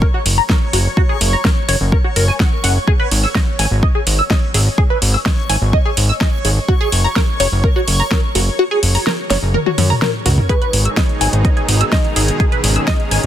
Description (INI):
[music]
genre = progressive house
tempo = 126 BPM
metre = 4/4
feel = straight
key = unclear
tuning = A4 = 440 Hz
[part]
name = tight sequenced synth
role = arpeggios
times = 0.0-13.2 s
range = F#4 to E6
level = -20 LUFS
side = equal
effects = chorus, phaser, sidechain pumping, dub echo
[part]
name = fat analog bass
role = bass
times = 0.0-13.3 s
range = F#1 to F#2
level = -15 LUFS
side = equal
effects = tube saturation, sidechain pumping
[part]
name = electronic kick drum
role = drums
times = 0.0-13.0 s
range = none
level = -15 LUFS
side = equal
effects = none
[part]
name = backwards swelling texture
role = texture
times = 0.0-13.3 s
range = G#4 to C#6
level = -26 LUFS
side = left 1 dB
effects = built-in reverb, sidechain pumping
[part]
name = deep house drum kit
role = drums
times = 0.3-13.3 s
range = hi-hat, snare drum, toms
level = -20 LUFS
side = equal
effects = none
[part]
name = wide unison pluck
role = melody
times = 10.5-13.3 s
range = B4 to D#5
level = -26 LUFS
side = right 1 dB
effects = tape echo
[part]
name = supersaw pad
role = sustained chords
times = 10.5-13.3 s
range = B2 to G#4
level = -22 LUFS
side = right 1 dB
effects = sidechain pumping
[sound]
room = digital ambience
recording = dense, heavily limited modern master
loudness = -13 LUFS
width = side -11 dB against mid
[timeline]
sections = 0.0-13.3 A section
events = kick drops out 8.6-10.5; drum fill 9.5-10.5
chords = 0.0 F#; 2.9 N.C.; 6.7 F#; 10.5 G#m